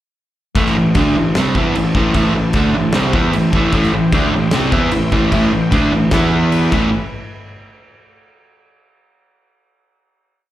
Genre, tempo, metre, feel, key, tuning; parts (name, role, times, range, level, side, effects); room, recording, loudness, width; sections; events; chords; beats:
hard rock; 151 BPM; 4/4; straight; A minor; A4 = 440 Hz
warm analog pad; sustained chords; 1.0-6.9 s; E4 to B5; -30 LUFS; left 3 dB
overdriven semi-hollow guitar; riff; 0.6-6.9 s; A2 to E4; -16 LUFS; right 3 dB; slapback echo
sludgy distorted guitar; riff; 0.6-6.9 s; A2 to E4; -22 LUFS; left 8 dB; overdrive, slapback echo
fuzz picked electric bass; bass; 0.6-6.9 s; A1 to E2; -20 LUFS; equal; overdrive
huge arena drum kit; drums; 0.6-6.8 s; crash cymbal, kick drum, snare drum; -20 LUFS; equal
crunchy overdriven guitar; riff; 3.7-6.9 s; A2 to A4; -23 LUFS; left 2 dB; slapback echo
small room ambience; live gig heard through the venue's PA, club reverb; -12 LUFS; side -13 dB against mid
0.6-6.9 riff; 6.9-8.5 final hit
drum fill 6.7
0.6 Am; 6.1 E5; 6.7 A; 6.9 N.C.
| 0.56 0.96 1.35 1.75 | 2.15 2.55 2.94 3.34 | 3.74 4.13 4.53 4.93 | 5.33 5.72 6.12 6.52